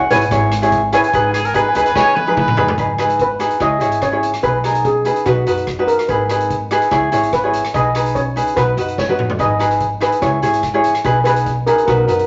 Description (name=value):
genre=calypso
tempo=145 BPM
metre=4/4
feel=straight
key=G# minor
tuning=A4 = 440 Hz
part: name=steel pan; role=melody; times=0.0-12.3 s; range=F#4 to G#5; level=-21 LUFS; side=equal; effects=none
part: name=ukulele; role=accompaniment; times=0.0-12.3 s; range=D#4 to C#5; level=-18 LUFS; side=equal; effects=none
part: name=upright bass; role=bass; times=0.1-12.3 s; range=G#1 to F#2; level=-26 LUFS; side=equal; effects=none
part: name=street-band drum kit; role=drums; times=0.1-12.3 s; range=hi-hat, kick drum, rim click, snare drum, toms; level=-28 LUFS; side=equal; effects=none
part: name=clear trumpet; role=second line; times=1.3-2.7 s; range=G#4 to C#5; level=-23 LUFS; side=equal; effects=none
room=wet studio reverb, RT60 0.5 s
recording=nothing above 7.7 kHz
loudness=-16 LUFS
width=mono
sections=0.0-2.8 A section; 2.8-12.3 B section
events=drum fill 2.0-2.8, 9.0-9.4; steel pan solo 2.8-12.3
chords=0.0 C#m; 1.1 G#m; 3.6 C#m; 4.4 G#m/B; 5.3 B; 6.1 G#m; 6.9 C#m7; 7.7 G#m/B; 8.6 B; 9.4 G#m; 10.2 C#m; 11.1 G#m/B